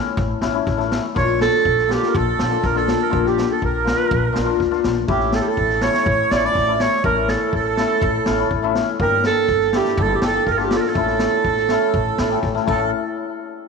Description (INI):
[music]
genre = klezmer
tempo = 123 BPM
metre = 4/4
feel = straight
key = A phrygian dominant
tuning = A4 = 440 Hz
[part]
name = cimbalom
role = accompaniment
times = 0.0-12.9 s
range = A3 to G4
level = -22 LUFS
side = left 13 dB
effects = none
[part]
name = upright bass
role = bass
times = 0.2-12.9 s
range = G1 to C#2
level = -26 LUFS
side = equal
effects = none
[part]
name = street-band drum kit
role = drums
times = 0.2-12.8 s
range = crash cymbal, kick drum, snare drum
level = -25 LUFS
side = equal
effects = none
[part]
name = warm clarinet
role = melody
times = 1.2-12.9 s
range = G4 to D5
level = -21 LUFS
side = right 4 dB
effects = none
[part]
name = accordion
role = second line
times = 1.2-12.9 s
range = G4 to D5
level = -24 LUFS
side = right 11 dB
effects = none
[sound]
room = moderate echo chamber reverb, RT60 2.7 s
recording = 1960s-style stereo with parts hard left and right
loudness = -16 LUFS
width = side -5 dB against mid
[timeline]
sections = 0.0-12.9 A section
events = drum fill 12.7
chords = 0.0 A; 1.2 Bb; 5.1 A; 9.0 Gm; 11.0 A; 12.9 N.C.